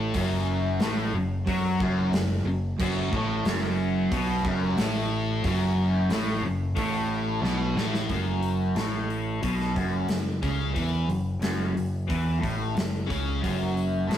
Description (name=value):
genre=hard rock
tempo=90 BPM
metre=4/4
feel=straight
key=F# minor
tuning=A4 = 440 Hz
part: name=overdriven electric guitar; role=riff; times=0.0-14.2 s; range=F#2 to F#3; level=-30 LUFS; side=left 3 dB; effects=phaser
part: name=overdriven semi-hollow guitar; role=riff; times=0.0-14.2 s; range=F#2 to F#3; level=-29 LUFS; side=right 3 dB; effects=none
part: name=tight distorted guitar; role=riff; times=0.0-8.1 s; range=F#2 to F#3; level=-35 LUFS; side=left 1 dB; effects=distortion
part: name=growling picked electric bass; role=bass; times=0.0-14.2 s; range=F#1 to F#2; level=-30 LUFS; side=equal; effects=overdrive
part: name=gated 80s drum kit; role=drums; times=0.1-14.2 s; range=crash cymbal, hi-hat, kick drum, snare drum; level=-31 LUFS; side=equal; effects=none
room=moderate stone room reverb, RT60 1.2 s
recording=rough rehearsal-room recording, warm saturation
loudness=-24 LUFS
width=side -10 dB against mid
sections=0.0-8.1 A section; 8.1-14.2 B section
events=drum fill 7.4-8.1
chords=0.0 F#m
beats=| 0.14 0.80 1.47 2.13 | 2.79 3.45 4.11 4.78 | 5.44 6.10 6.77 7.43 | 8.10 8.76 9.43 10.09 | 10.76 11.43 12.10 12.76 | 13.43 14.10